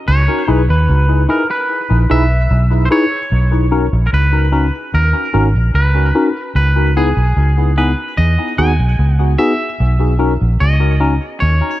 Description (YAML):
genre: lovers rock reggae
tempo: 74 BPM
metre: 4/4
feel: straight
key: B major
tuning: A4 = 440 Hz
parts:
  - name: twangy electric guitar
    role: melody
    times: 0.0-11.8 s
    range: G#4 to G#5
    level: -20 LUFS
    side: right 1 dB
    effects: spring reverb, tape echo
  - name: vintage muted fingered electric bass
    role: bass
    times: 0.1-11.6 s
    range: G#1 to E2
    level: -12 LUFS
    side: equal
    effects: none
  - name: barky tine electric piano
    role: accompaniment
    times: 0.5-11.1 s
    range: B3 to B4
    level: -18 LUFS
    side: left 2 dB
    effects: overdrive, phaser, tape echo
room: light reverb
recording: none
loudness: -12 LUFS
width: side -15 dB against mid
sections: 0.0-3.3 A section; 3.3-11.8 B section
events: none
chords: 0.1 C#m7; 3.3 Bmaj9; 4.9 D#m7; 6.5 C#m7; 8.2 Emaj7; 9.8 Bmaj9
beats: | 0.08 0.89 1.69 2.50 | 3.31 4.12 4.93 5.74 | 6.55 7.36 8.17 8.98 | 9.79 10.60 11.41